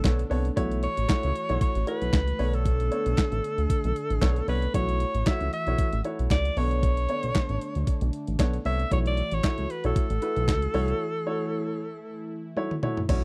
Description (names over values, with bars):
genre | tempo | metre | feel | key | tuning
early-eighties boogie funk | 115 BPM | 4/4 | swing 56% on 16ths | unclear | A4 = 437 Hz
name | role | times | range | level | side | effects
bright alto saxophone | melody | 0.0-12.5 s | A4 to E5 | -33 LUFS | equal | slapback echo
warm baby grand piano | accompaniment | 0.0-13.2 s | A3 to C#5 | -35 LUFS | equal | none
brassy analog pad | sustained chords | 0.0-13.2 s | D3 to F#4 | -39 LUFS | equal | chorus
chorused synth bass | bass | 0.0-13.2 s | A1 to D2 | -29 LUFS | equal | none
clean 12-bit digital drum machine | drums | 0.0-13.2 s | crash cymbal, hi-hat, kick drum, snare drum, toms | -28 LUFS | equal | none
group handclap | percussion | 0.0-10.6 s | none | -42 LUFS | equal | none
room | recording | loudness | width
little or no reverb | dry, close 1970s-style studio recording | -26 LUFS | mono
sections
0.0-13.1 A section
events
break 11.0-13.1; drum fill 12.6-13.1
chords
0.0 Bm9; 0.6 F#m7; 2.4 Bm9; 4.7 F#m7; 6.6 Bm9; 8.9 F#m7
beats
0.05 | 0.57 1.09 1.61 2.13 | 2.65 3.18 3.70 4.22 | 4.74 5.26 5.79 6.31 | 6.83 7.35 7.87 8.39 | 8.91 9.44 9.96 10.48 | 11.00 11.52 12.05 12.57 | 13.09